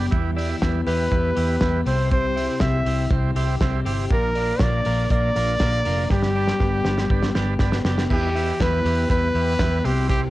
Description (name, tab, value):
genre	jangly indie pop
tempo	120 BPM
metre	4/4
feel	straight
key	unclear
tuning	A4 = 440 Hz
part	combo organ	accompaniment	0.0-10.2 s	B3 to C5	-31 LUFS	right 7 dB	cassette tape
part	mellow electric guitar	accompaniment	0.0-10.3 s	G2 to Bb4	-34 LUFS	right 6 dB	tremolo, cassette tape
part	twelve-string electric guitar	arpeggios	0.0-10.3 s	G2 to Bb4	-27 LUFS	left 5 dB	cassette tape
part	vintage muted fingered electric bass	bass	0.0-10.3 s	F1 to E2	-24 LUFS	equal	none
part	cloth-damped thuddy drum kit	drums	0.1-10.2 s	crash cymbal, hi-hat, kick drum, ride cymbal, snare drum	-25 LUFS	equal	cassette tape
part	warm trumpet	melody	0.9-10.2 s	G4 to E5	-25 LUFS	equal	none
room	light reverb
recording	home recording on cassette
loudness	-19 LUFS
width	side -17 dB against mid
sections	0.0-8.1 A section; 8.1-10.3 A section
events	drum fill 6.1-8.1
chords	0.1 Em; 1.9 C; 4.1 Bb; 6.1 G; 8.1 Em